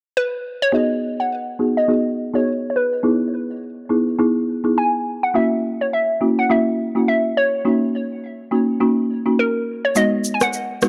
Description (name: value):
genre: afrobeats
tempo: 104 BPM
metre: 4/4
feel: swing 58% on 16ths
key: G# minor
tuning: A4 = 439 Hz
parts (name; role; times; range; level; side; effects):
- hollow square pluck; melody; 0.2-10.9 s; A#4 to G#5; -23 LUFS; equal; chorus, low-pass filter, digital delay
- folk marimba with medium mallets; accompaniment; 0.7-10.9 s; G#3 to G#4; -22 LUFS; equal; low-pass filter
- electronic shaker and rim click; drums; 10.0-10.9 s; none; -24 LUFS; equal; none
room: light reverb, digital ambience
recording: dark, warm production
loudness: -19 LUFS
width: mono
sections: 0.7-10.9 A section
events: filter sweep 0.7-10.9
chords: 0.0 N.C.; 0.7 G#m7; 3.0 Emaj7; 5.3 F#7; 7.7 D#m7; 10.0 G#m7